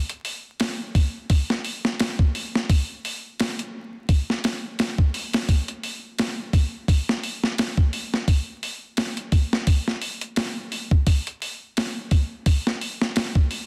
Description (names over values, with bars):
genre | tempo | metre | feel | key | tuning
trip hop | 86 BPM | 4/4 | swing 56% on 16ths | none | none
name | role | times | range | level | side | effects
boom bap sampler-style drum kit | drums | 0.1-13.7 s | hi-hat, kick drum, snare drum | -24 LUFS | equal | small room ambience
room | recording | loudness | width
light reverb | dense, heavily limited modern master, vinyl crackle | -24 LUFS | mono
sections
0.0-13.7 A section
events
none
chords
none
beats
0.60 1.30 2.00 | 2.69 3.39 4.09 4.79 | 5.49 6.18 6.88 7.58 | 8.28 8.97 9.67 10.37 | 11.07 11.77 12.46 13.16